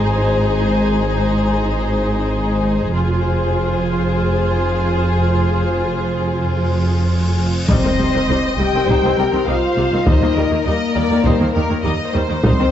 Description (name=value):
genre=cinematic, epic orchestral film score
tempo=101 BPM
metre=4/4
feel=straight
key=C minor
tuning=A4 = 440 Hz
part: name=dark symphonic violin section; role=melody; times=0.0-12.7 s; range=Bb4 to G5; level=-24 LUFS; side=left 2 dB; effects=none
part: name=rich symphonic violin section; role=second line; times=0.0-12.7 s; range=Ab4 to Eb5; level=-24 LUFS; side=left 4 dB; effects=none
part: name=rich symphonic viola section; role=accompaniment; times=0.0-12.6 s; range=C3 to F4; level=-23 LUFS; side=right 2 dB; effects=none
part: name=rich symphonic double bass section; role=bass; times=0.0-12.5 s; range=F1 to Eb2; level=-21 LUFS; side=right 1 dB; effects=none
part: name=warm symphonic cello section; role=bass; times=0.0-12.6 s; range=C2 to Ab2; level=-21 LUFS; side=right 1 dB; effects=none
part: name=cymbal swell and impact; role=sound effects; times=6.7-10.1 s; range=none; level=-28 LUFS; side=equal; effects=none
part: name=dark French horn section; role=sustained chords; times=7.7-12.7 s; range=Bb3 to G4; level=-20 LUFS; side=left 4 dB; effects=none
part: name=warm trombone section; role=sustained chords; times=7.7-12.7 s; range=Eb3 to G3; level=-28 LUFS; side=right 3 dB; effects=none
part: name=taiko ensemble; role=drums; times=7.7-12.7 s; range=none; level=-18 LUFS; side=equal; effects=none
room=moderate scoring stage reverb, RT60 1.5 s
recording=dark, warm production, nothing above 8.0 kHz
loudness=-15 LUFS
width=side -10 dB against mid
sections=0.0-7.7 A section; 7.7-12.7 B section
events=build-up 0.0-7.7; cymbal swell 6.7-7.7; impact 7.7-10.1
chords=0.0 Ab; 2.9 Fm; 7.7 Cm; 10.1 Eb